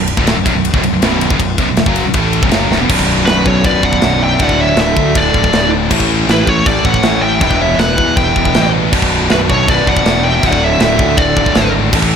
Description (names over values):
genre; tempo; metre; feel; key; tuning
heavy metal; 160 BPM; 4/4; straight; B minor; A4 = 440 Hz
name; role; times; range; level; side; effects
biting overdriven guitar; riff; 0.0-12.2 s; B1 to A4; -19 LUFS; equal; none
high-gain distorted guitar; riff; 0.0-12.2 s; B1 to A3; -19 LUFS; right 10 dB; distortion
scooped high-gain guitar; riff; 0.0-12.2 s; B1 to A3; -19 LUFS; left 13 dB; distortion
fuzz fingered electric bass; bass; 0.0-12.2 s; B0 to E2; -18 LUFS; equal; overdrive
tight metal drum kit; drums; 0.1-12.1 s; china cymbal, crash cymbal, kick drum, ride cymbal, snare drum; -16 LUFS; equal; none
high-gain lead guitar; melody; 3.3-11.7 s; B4 to G5; -16 LUFS; right 1 dB; distortion
high-gain lead guitar; second line; 3.3-11.7 s; E4 to E5; -22 LUFS; right 2 dB; distortion
room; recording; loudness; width
studio ambience; none; -10 LUFS; side -7 dB against mid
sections
0.0-2.9 A section; 2.9-12.2 B section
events
drum fill 2.7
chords
0.0 Bm; 4.4 D; 5.9 A; 7.4 Em; 8.9 Bm; 10.4 D